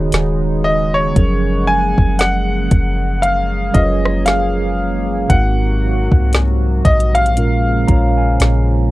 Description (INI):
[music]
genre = contemporary R&B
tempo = 58 BPM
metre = 4/4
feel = swing 58% on 16ths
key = unclear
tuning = A4 = 440 Hz
[part]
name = mellow tine electric piano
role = accompaniment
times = 0.0-8.9 s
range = Ab2 to Bb5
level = -20 LUFS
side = right 3 dB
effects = medium stereo tremolo
[part]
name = chorused pulse-width pad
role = sustained chords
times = 0.0-8.9 s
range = C3 to Gb5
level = -25 LUFS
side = left 2 dB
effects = sidechain pumping
[part]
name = soft 808-style bass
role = bass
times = 0.0-8.9 s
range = D#1 to C2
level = -17 LUFS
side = equal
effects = none
[part]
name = smooth R&B drum kit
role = drums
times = 0.1-8.7 s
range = hi-hat, kick drum, rim click, snare drum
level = -14 LUFS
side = equal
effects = none
[part]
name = bright baby grand piano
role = melody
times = 0.6-8.7 s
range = C#5 to Ab5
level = -18 LUFS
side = left 1 dB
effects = slapback echo
[sound]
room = little or no reverb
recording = none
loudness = -13 LUFS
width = side -18 dB against mid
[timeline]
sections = 0.0-8.9 A section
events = none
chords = 0.0 B69/D#; 1.2 Gbmaj9; 5.3 Ab9; 7.4 Bbm7